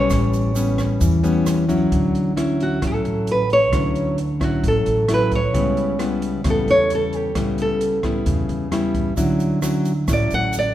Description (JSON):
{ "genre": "bossa nova", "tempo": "132 BPM", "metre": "4/4", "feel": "straight", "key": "D major", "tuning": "A4 = 441 Hz", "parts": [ { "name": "nylon-string guitar", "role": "melody", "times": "0.0-10.7 s", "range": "F#4 to F#5", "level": "-20 LUFS", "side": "right 1 dB", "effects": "none" }, { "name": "nylon-string guitar", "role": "accompaniment", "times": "0.0-10.7 s", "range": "A2 to E4", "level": "-21 LUFS", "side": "left 2 dB", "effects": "none" }, { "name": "upright bass", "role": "bass", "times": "0.0-10.7 s", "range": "A1 to E2", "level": "-25 LUFS", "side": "equal", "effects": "none" }, { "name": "open jazz drum kit", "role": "drums", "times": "0.1-10.6 s", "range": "hi-hat, kick drum, rim click", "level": "-27 LUFS", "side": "right 1 dB", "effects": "none" }, { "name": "tube shaker", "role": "percussion", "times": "0.1-1.9, 9.2-10.7 s", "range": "none", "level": "-38 LUFS", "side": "right 5 dB", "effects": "none" } ], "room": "moderate church reverb, RT60 2.4 s", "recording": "recorded in a church or concert hall", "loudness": "-17 LUFS", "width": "side -12 dB against mid", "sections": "0.0-1.9 A section; 1.9-10.7 B section", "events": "nylon-string guitar solo 1.9-10.7", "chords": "0.1 A9; 1.9 Dmaj9; 5.5 C#m7b5; 9.2 Dmaj9" }